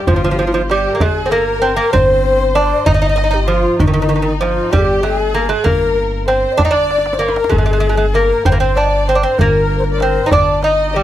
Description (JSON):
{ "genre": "Persian modal ensemble", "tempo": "64 BPM (dotted quarters)", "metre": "6/8", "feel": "straight", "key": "G dastgah shur", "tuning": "A4 = 439 Hz", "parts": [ { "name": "lute", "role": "melody", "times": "0.0-11.0 s", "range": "Eb3 to Eb4", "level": "-15 LUFS", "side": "right 3 dB", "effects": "none" }, { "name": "breathy ney", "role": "second line", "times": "0.0-11.0 s", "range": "D4 to F5", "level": "-19 LUFS", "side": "left 7 dB", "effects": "tape echo" }, { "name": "clear symphonic violin section", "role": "second line", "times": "0.0-11.0 s", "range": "Eb4 to Eb5", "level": "-23 LUFS", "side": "left 1 dB", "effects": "none" }, { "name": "upright bass", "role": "bass", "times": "0.1-11.0 s", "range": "G1", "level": "-19 LUFS", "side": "equal", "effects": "none" }, { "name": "tombak", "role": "percussion", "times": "0.1-11.0 s", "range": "none", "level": "-18 LUFS", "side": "right 1 dB", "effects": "none" } ], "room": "small room ambience", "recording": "dry, close 1970s-style studio recording", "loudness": "-12 LUFS", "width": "side -12 dB against mid", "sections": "0.1-11.0 A section", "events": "drum fill 6.9-7.5", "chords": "none" }